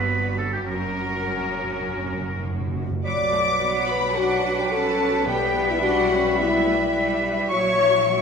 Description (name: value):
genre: classical, dramatic, fast romantic movement for symphony orchestra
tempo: 100-109 BPM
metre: 4/4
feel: straight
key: B minor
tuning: A4 = 441 Hz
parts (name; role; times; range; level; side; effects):
- clear symphonic violin section; melody; 0.0-8.2 s; G4 to D6; -30 LUFS; left 4 dB; none
- clear oboe; second line; 0.0-8.2 s; G4 to C#6; -27 LUFS; right 2 dB; none
- warm symphonic violin section; second line; 0.0-8.2 s; F#4 to D6; -33 LUFS; left 3 dB; none
- warm symphonic viola section; accompaniment; 0.0-8.2 s; F#3 to B4; -31 LUFS; right 2 dB; none
- bright symphonic cello section; bass; 0.0-8.2 s; F#2 to D4; -31 LUFS; right 2 dB; none
- rich symphonic double bass section; bass; 0.0-8.2 s; F#1 to B1; -32 LUFS; right 4 dB; none
- timpani; percussion; 0.7-6.1 s; F#2 to B2; -32 LUFS; right 1 dB; none
- mellow hollow small flute group; second line; 3.0-8.2 s; E5 to D6; -30 LUFS; equal; none
- mellow bassoon; accompaniment; 3.0-8.2 s; F#3 to G3; -29 LUFS; equal; none
- warm French horn section; sustained chords; 3.1-8.2 s; E4 to D5; -23 LUFS; left 4 dB; none
room: wet concert hall reverb, RT60 1.8 s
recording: minimal, uncompressed stereo recording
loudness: -20 LUFS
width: side -6 dB against mid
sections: 0.0-3.0 A section; 3.0-8.2 B section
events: timpani fill 0.7-3.0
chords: 0.0 Gmaj7; 0.7 F#; 3.0 Bm; 5.3 Em/B; 7.5 F#7/A#